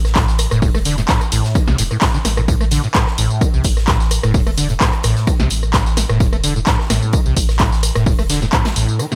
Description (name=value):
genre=acid house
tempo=129 BPM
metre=4/4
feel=swing 53% on 16ths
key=A minor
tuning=A4 = 440 Hz
part: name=warm sub bass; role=bass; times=0.0-8.9 s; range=E1 to C2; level=-22 LUFS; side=equal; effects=sidechain pumping
part: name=punchy analog drum machine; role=drums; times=0.0-9.2 s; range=handclaps, hi-hat, rim click, snare drum, tambourine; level=-23 LUFS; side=equal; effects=none
part: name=huge arena drum kit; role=drums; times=0.1-9.1 s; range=hi-hat, snare drum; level=-35 LUFS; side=equal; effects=sidechain pumping on hats, high-pass filter on hats, high-pass filter on snare, high-pass filter on room
part: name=acid bass, saw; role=riff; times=0.2-9.2 s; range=A2 to A3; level=-22 LUFS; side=equal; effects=overdrive, ensemble chorus, cassette tape, sidechain pumping
part: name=electronic kick drum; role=drums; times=0.2-8.6 s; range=none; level=-19 LUFS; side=equal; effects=overdrive
room=little or no reverb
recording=none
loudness=-16 LUFS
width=mono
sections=0.0-9.2 A section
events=break 9.0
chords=0.0 A5